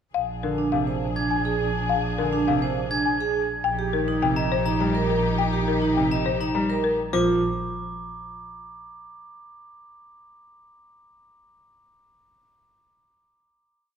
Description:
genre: classical, minimalist pattern music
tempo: 103 BPM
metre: 3/4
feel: straight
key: Bb mixolydian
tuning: A4 = 443 Hz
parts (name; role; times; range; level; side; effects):
- folk marimba with medium hard mallets; melody; 0.1-7.4 s; Bb4 to Bb5; -28 LUFS; left 10 dB; none
- rich studio string section; sustained chords; 0.1-7.0 s; D4 to Ab4; -31 LUFS; left 4 dB; none
- rich double bass; bass; 0.1-7.4 s; Bb1; -28 LUFS; right 3 dB; none
- bright grand piano; accompaniment; 0.4-7.4 s; C3 to G3; -30 LUFS; left 1 dB; none
- vibraphone with medium hard mallets; arpeggios; 0.6-7.4 s; D4 to Eb5; -26 LUFS; right 4 dB; none
- glockenspiel with brass mallets; arpeggios; 1.2-7.4 s; Bb5 to Ab6; -33 LUFS; equal; none
room: wet recital hall reverb, RT60 1.7 s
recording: dark, warm production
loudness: -21 LUFS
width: side -8 dB against mid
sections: 0.1-7.1 A section; 7.1-8.9 final chord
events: none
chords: 0.1 Bb7; 3.6 Eb/Bb; 7.1 Bb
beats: | 0.14 0.73 1.31 | 1.89 2.48 3.06 | 3.64 4.22 4.80 | 5.39 5.97 6.55 | 7.13

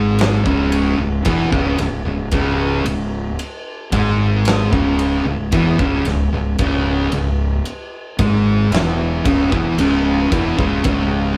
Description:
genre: stoner and doom metal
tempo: 56 BPM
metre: 4/4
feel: straight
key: C# minor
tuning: A4 = 440 Hz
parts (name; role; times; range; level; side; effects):
- thick fuzz guitar; riff; 0.0-11.4 s; C#2 to G#3; -22 LUFS; equal; distortion
- thick fuzz guitar; riff; 0.0-11.4 s; C#2 to G#3; -22 LUFS; equal; distortion
- fuzz fingered electric bass; bass; 0.0-11.3 s; C#1 to G#1; -25 LUFS; equal; overdrive, tube saturation
- big rock drum kit; drums; 0.2-11.1 s; kick drum, ride cymbal, snare drum; -25 LUFS; equal; none
room: moderate small room reverb, RT60 0.5 s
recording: band playing live in one room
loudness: -17 LUFS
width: mono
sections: 0.0-11.4 A section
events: none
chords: 0.0 C#m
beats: 0.19 1.26 | 2.33 3.40 4.46 5.53 | 6.59 7.66 8.72 9.79 | 10.85

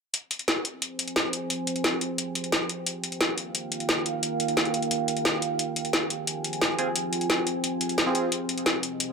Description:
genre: dark technical drum and bass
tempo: 176 BPM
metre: 4/4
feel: straight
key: F minor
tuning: A4 = 440 Hz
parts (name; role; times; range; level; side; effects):
- deep dark ambient pad; sustained chords; 0.9-9.1 s; C4 to Ab5; -30 LUFS; right 2 dB; chorus, built-in reverb
- drum and bass drum kit; drums; 0.1-9.1 s; hi-hat, snare drum; -26 LUFS; left 1 dB; none
- band-passed chord stab; stabs; 6.8-8.3 s; C4 to Ab4; -30 LUFS; right 3 dB; phaser, cassette tape, tape echo
room: moderate plate reverb, RT60 1.1 s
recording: none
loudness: -24 LUFS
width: side -5 dB against mid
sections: 0.1-9.1 A section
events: none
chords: 0.1 Fm; 2.9 Eb; 5.6 Fm; 8.3 Cm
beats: | 0.14 0.48 0.82 1.16 | 1.50 1.84 2.18 2.52 | 2.87 3.21 3.55 3.89 | 4.23 4.57 4.91 5.25 | 5.59 5.93 6.27 6.62 | 6.96 7.30 7.64 7.98 | 8.32 8.66 9.00

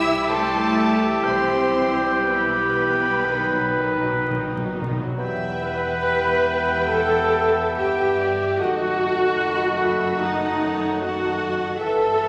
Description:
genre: classical, slow romantic movement for symphony orchestra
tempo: 59-80 BPM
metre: 4/4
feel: rubato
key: E minor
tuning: A4 = 440 Hz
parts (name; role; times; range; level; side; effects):
- warm studio violin section; melody; 0.0-12.3 s; E5 to E6; -36 LUFS; equal; none
- clear studio violin section; second line; 0.0-12.3 s; A4 to G5; -35 LUFS; equal; none
- hollow flute section; second line; 0.0-12.3 s; A4 to B5; -33 LUFS; equal; none
- warm studio viola section; accompaniment; 0.0-12.3 s; C3 to B4; -26 LUFS; equal; none
- dark French horn section; sustained chords; 0.0-12.3 s; D#3 to B4; -33 LUFS; equal; none
- warm trumpet; stabs; 0.0-4.8 s; G4 to B4; -27 LUFS; equal; none
- warm studio cello section; bass; 0.0-12.3 s; E2 to E4; -32 LUFS; equal; none
- warm studio double bass section; bass; 0.0-12.3 s; E1 to C2; -40 LUFS; equal; none
- bright oboe; second line; 0.3-12.3 s; C5 to G5; -29 LUFS; equal; none
- clear clarinet; second line; 0.3-12.3 s; A4 to E5; -36 LUFS; equal; none
- timpani; percussion; 3.3-5.1 s; B2; -32 LUFS; equal; none
- mellow bassoon; accompaniment; 5.2-12.3 s; E3 to B3; -33 LUFS; equal; none
room: wet scoring stage reverb, RT60 2.0 s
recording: vinyl crackle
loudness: -21 LUFS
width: mono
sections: 0.0-5.2 A section; 5.2-12.3 B section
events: timpani fill 3.3-5.2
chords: 0.0 C; 1.3 Em/B; 3.3 B; 5.2 Em; 8.6 D#dim/F#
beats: 0.30 | 1.27 2.25 3.26 4.25 | 5.19 6.06 6.92 7.76 | 8.59 9.40 10.21 11.01 | 11.79

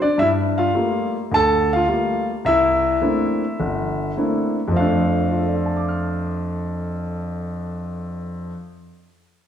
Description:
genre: solo jazz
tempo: 105 BPM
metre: 4/4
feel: swing 69% on 8ths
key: F major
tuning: A4 = 441 Hz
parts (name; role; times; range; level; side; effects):
- warm grand piano; solo; 0.0-8.8 s; G1 to F6; -18 LUFS; equal; none
room: wet recital hall reverb, RT60 1.3 s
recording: recorded in a church or concert hall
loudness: -18 LUFS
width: side -9 dB against mid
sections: 0.2-4.7 A section; 4.7-7.0 B section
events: none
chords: 0.2 Gm9; 2.5 C13; 4.7 F6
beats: | 0.17 0.74 1.31 1.88 | 2.45 3.02 3.60 4.17 | 4.74 5.31 5.88 6.45

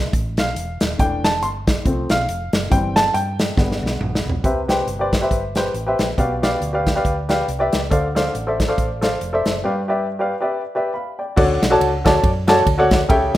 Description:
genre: uptempo gospel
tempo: 139 BPM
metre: 4/4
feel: swing 57% on 8ths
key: C major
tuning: A4 = 439 Hz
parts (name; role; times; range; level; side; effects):
- hollow-body short-scale fingered electric bass; bass; 0.0-13.4 s; Eb1 to G2; -26 LUFS; right 1 dB; none
- modern studio drum kit; drums; 0.1-13.4 s; crash cymbal, hi-hat, kick drum, ride cymbal, snare drum, toms; -20 LUFS; equal; none
- warm baby grand piano; accompaniment; 0.4-13.4 s; G2 to C6; -19 LUFS; equal; none
room: light reverb, small room ambience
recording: rough home demo mix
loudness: -17 LUFS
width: side -14 dB against mid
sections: 0.0-4.4 A section; 4.4-11.4 B section; 11.4-13.4 C section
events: grand piano solo 0.0-4.4; drum fill 3.6-4.4; break 9.6-11.4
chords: 0.0 Fmaj7; 1.0 C69/E (rootless); 1.9 F; 2.7 C/G; 3.6 G; 4.4 Cmaj7; 6.2 G7/B; 7.9 Dm7; 9.6 G7; 11.4 Dmaj7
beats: 0.13 0.56 | 0.99 1.43 1.86 2.29 | 2.72 3.15 3.58 4.01 | 4.45 4.88 5.31 5.75 | 6.18 6.61 7.05 7.48 | 7.92 8.35 8.78 9.22 | 9.65 10.08 10.52 10.95 | 11.38 11.81 12.24 12.67 | 13.10

